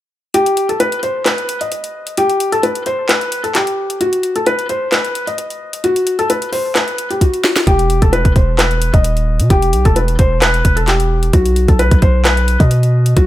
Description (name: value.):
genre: hip hop, trap.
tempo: 131 BPM.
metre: 4/4.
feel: half-time.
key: E harmonic minor.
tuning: A4 = 439 Hz.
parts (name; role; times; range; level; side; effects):
felt-muted upright piano; melody; 0.3-13.3 s; F#4 to D#5; -16 LUFS; left 1 dB; low-pass filter.
trap drum kit; drums; 0.3-13.3 s; handclaps, hi-hat, kick drum, snare drum; -15 LUFS; equal; none.
long sustained 808-style bass; bass; 7.7-13.3 s; D#1 to B2; -14 LUFS; equal; none.
room: digital ambience.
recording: none.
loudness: -12 LUFS.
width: side -14 dB against mid.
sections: 0.3-13.3 A section.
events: kick muted 0.3-7.7; drum fill 7.2-7.7.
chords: 0.3 N.C.; 7.7 Em; 11.3 B.